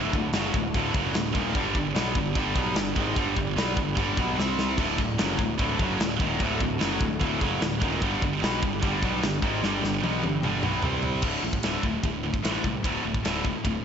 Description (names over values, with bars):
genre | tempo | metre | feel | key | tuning
heavy metal | 149 BPM | 4/4 | straight | unclear | A4 = 440 Hz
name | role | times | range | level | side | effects
analog string pad | sustained chords | 0.0-11.2 s | C3 to C5 | -37 LUFS | right 1 dB | ensemble chorus, phaser
heavy high-gain guitar | riff | 0.0-13.8 s | D2 to C4 | -29 LUFS | right 9 dB | distortion, slapback echo
tight distorted guitar | riff | 0.0-13.8 s | D2 to C4 | -31 LUFS | left 9 dB | distortion
fuzz picked electric bass | bass | 0.0-13.8 s | D1 to C2 | -31 LUFS | equal | overdrive
tight metal drum kit | drums | 0.1-13.7 s | china cymbal, crash cymbal, kick drum, ride cymbal, snare drum, toms | -28 LUFS | equal | none
room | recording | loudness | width
moderate lush hall reverb, RT60 1.9 s, studio reverb | big arena sound, nothing above 7.8 kHz | -24 LUFS | side -7 dB against mid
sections
0.0-11.2 A section; 11.2-13.8 B section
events
drum fill 4.4-4.8, 9.6-11.2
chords
0.0 D; 1.6 G5; 4.4 C5; 4.8 D; 8.0 G5; 10.8 C5; 11.2 D5